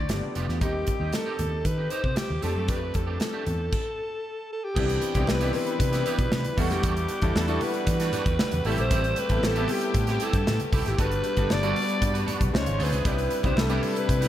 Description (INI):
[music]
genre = polished 1980s jazz-funk pop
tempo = 116 BPM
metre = 4/4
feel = straight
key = unclear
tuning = A4 = 441 Hz
[part]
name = breathy alto saxophone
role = melody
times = 0.0-14.3 s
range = G4 to D5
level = -30 LUFS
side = equal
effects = analog delay
[part]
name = clear grand piano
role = accompaniment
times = 0.0-14.3 s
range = Eb3 to F#5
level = -31 LUFS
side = left 3 dB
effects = lush chorus
[part]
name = vintage muted fingered electric bass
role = bass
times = 0.0-14.3 s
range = F1 to E3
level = -28 LUFS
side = equal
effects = none
[part]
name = electric guitar at the edge of break-up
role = riff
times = 0.1-14.3 s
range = G3 to B4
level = -36 LUFS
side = right 5 dB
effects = ensemble chorus
[part]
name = modern studio drum kit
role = drums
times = 0.1-14.3 s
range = crash cymbal, hi-hat, kick drum, snare drum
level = -28 LUFS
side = equal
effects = none
[part]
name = congas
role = percussion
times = 0.1-14.2 s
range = none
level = -38 LUFS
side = left 1 dB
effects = none
[part]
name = rich studio string section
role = sustained chords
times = 4.8-14.3 s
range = C3 to F#5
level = -37 LUFS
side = left 1 dB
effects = none
[sound]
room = moderate plate reverb, RT60 1.9 s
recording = dreamy mix soaked in reverb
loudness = -23 LUFS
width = side -12 dB against mid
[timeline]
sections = 0.0-4.8 A section; 4.8-14.3 B section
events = stop 3.7-4.8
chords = 0.1 G7; 0.6 Cm/Eb; 2.4 F69; 4.2 N.C.; 4.8 Cmaj7; 6.6 Em9; 8.7 Am7; 11.0 Gmaj7; 12.5 C#maj7; 13.1 Cmaj7